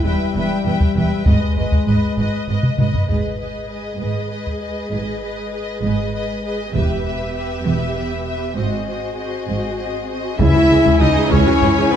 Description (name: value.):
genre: cinematic, epic orchestral film score.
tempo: 66 BPM (dotted quarters).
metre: 6/8.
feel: straight.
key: G# harmonic minor.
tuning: A4 = 441 Hz.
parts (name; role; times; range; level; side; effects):
rich studio violin section; melody; 0.0-12.0 s; B4 to G5; -28 LUFS; left 5 dB; none.
rich symphonic violin section; second line; 0.0-12.0 s; B4 to E5; -29 LUFS; left 1 dB; none.
rich symphonic viola section; accompaniment; 0.0-12.0 s; E4 to B4; -28 LUFS; right 1 dB; none.
clear French horn section; sustained chords; 0.0-2.8, 10.4-12.0 s; G3 to E4; -19 LUFS; left 2 dB; none.
warm symphonic cello section; bass; 0.0-11.8 s; C#2 to G#2; -24 LUFS; right 2 dB; none.
rich symphonic double bass section; bass; 0.1-11.7 s; E1 to C#2; -24 LUFS; right 3 dB; none.
taiko ensemble; drums; 0.8-11.9 s; none; -19 LUFS; equal; none.
warm symphonic string section; sustained chords; 3.1-12.0 s; E3 to G#5; -26 LUFS; left 1 dB; none.
clear trumpet; stabs; 10.4-12.0 s; B3 to E4; -23 LUFS; right 2 dB; none.
warm tuba; bass; 10.4-11.7 s; C#2; -24 LUFS; right 3 dB; none.
timpani; percussion; 10.4-11.3 s; C#3; -24 LUFS; left 4 dB; none.
room: moderate scoring stage reverb, RT60 1.7 s.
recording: dark, warm production.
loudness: -16 LUFS.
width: side -9 dB against mid.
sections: 0.0-3.1 A section; 3.1-10.4 B section; 10.4-12.0 C section.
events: drum fill 2.6-3.1.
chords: 0.0 Em; 1.3 G#m; 6.7 Em; 8.6 G#7; 10.4 C#m.